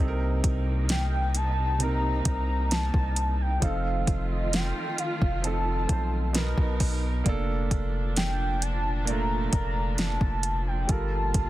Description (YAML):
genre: contemporary R&B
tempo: 66 BPM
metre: 4/4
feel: straight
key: C dorian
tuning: A4 = 438 Hz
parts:
  - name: warm concert grand piano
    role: accompaniment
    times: 0.0-11.5 s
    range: B2 to C5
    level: -33 LUFS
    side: right 4 dB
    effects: none
  - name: warm symphonic string section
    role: sustained chords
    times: 0.0-11.5 s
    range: Bb2 to A#4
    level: -36 LUFS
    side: equal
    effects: none
  - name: long sustained 808-style bass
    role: bass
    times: 0.0-11.5 s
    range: F1 to C2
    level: -28 LUFS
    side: equal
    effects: none
  - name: smooth R&B drum kit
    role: drums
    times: 0.4-11.5 s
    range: hi-hat, kick drum, snare drum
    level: -26 LUFS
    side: equal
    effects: overdrive
  - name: warm velvety synth lead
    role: melody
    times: 0.9-11.5 s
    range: Eb5 to Bb5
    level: -32 LUFS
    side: equal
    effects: chorus, tape echo
room: digital ambience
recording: dense, heavily limited modern master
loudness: -24 LUFS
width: side -15 dB against mid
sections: 0.0-11.5 A section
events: none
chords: 0.0 Cm7; 3.6 F7; 6.3 Bmaj7; 7.3 Bbmaj7/F; 10.9 Gm9